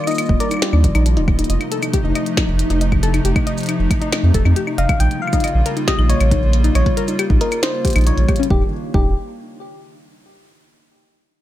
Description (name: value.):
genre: IDM.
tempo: 137 BPM.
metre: 4/4.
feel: straight.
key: Eb lydian.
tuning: A4 = 440 Hz.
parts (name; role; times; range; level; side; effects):
soft struck synth lead; melody; 0.0-1.3, 4.8-9.1 s; G4 to G5; -24 LUFS; left 2 dB; chorus, cassette tape, digital delay.
hollow soft pad; sustained chords; 0.0-8.7 s; C3 to F4; -24 LUFS; equal; chorus.
glitchy drum kit; drums; 0.0-8.5 s; claves, hi-hat, shaker, snare drum; -24 LUFS; left 1 dB; ping-pong delay.
flickering grainy texture; texture; 0.0-8.5 s; Eb4; -32 LUFS; equal; built-in reverb.
warbly dusty pluck; arpeggios; 0.1-9.1 s; Db4 to Eb5; -25 LUFS; left 4 dB; chorus, tape echo.
round analog bass; bass; 0.3-9.1 s; Eb1 to F2; -16 LUFS; equal; none.
electronic kick drum; drums; 0.3-9.0 s; none; -19 LUFS; equal; none.
room: little or no reverb.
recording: none.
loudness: -14 LUFS.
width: side -13 dB against mid.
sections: 0.0-8.5 A section; 8.5-10.3 B section.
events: none.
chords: 0.0 Ebmaj7; 1.5 F7; 5.0 Bbm6; 8.5 Ebmaj7.